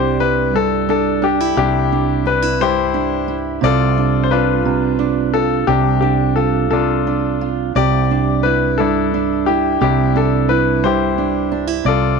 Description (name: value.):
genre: acoustic folk-pop ballad.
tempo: 58 BPM (dotted quarters).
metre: 6/8.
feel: straight.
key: C major.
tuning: A4 = 440 Hz.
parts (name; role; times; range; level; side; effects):
bright concert grand piano; melody; 0.0-12.2 s; D4 to D5; -17 LUFS; left 10 dB; tape echo.
fingerpicked steel-string acoustic guitar; accompaniment; 0.0-12.2 s; G2 to G4; -18 LUFS; right 12 dB; none.
fretless electric bass; bass; 0.0-12.2 s; C2; -22 LUFS; right 1 dB; ensemble chorus.
room: light reverb, small room ambience.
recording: 1960s-style stereo with parts hard left and right.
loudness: -14 LUFS.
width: side -5 dB against mid.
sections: 0.0-12.2 A section.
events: none.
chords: 0.0 Cadd9; 3.6 Dm7/C; 7.8 Cadd9.